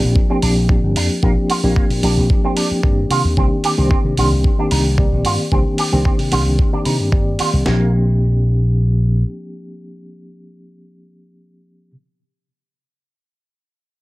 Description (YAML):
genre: nu-disco, nu disco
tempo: 112 BPM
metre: 4/4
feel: straight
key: Bb major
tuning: A4 = 443 Hz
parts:
  - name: mellow reed electric piano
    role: accompaniment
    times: 0.0-11.9 s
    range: Eb3 to D5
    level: -20 LUFS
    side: left 1 dB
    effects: fast tremolo, sidechain pumping, low-pass filter, digital delay
  - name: slap bass with an envelope filter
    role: bass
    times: 0.0-9.2 s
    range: G1 to C3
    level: -17 LUFS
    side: equal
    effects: sidechain pumping
  - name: dusty soul sampler-style drum kit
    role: drums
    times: 0.2-7.8 s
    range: kick drum, snare drum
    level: -16 LUFS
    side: equal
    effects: none
  - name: electric guitar with an envelope filter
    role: riff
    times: 0.3-7.9 s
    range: Bb3 to G4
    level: -24 LUFS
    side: right 3 dB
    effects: ensemble chorus, low-pass filter, digital delay
  - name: electronic hi-hat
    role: drums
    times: 0.4-7.5 s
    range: none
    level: -25 LUFS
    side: right 3 dB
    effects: none
room: little or no reverb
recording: none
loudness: -14 LUFS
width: side -19 dB against mid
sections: 0.0-7.7 A section; 7.7-11.9 B section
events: filter sweep on clean electric guitar 0.0-7.7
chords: 0.0 Bb69; 3.1 Cm7; 7.7 Bb69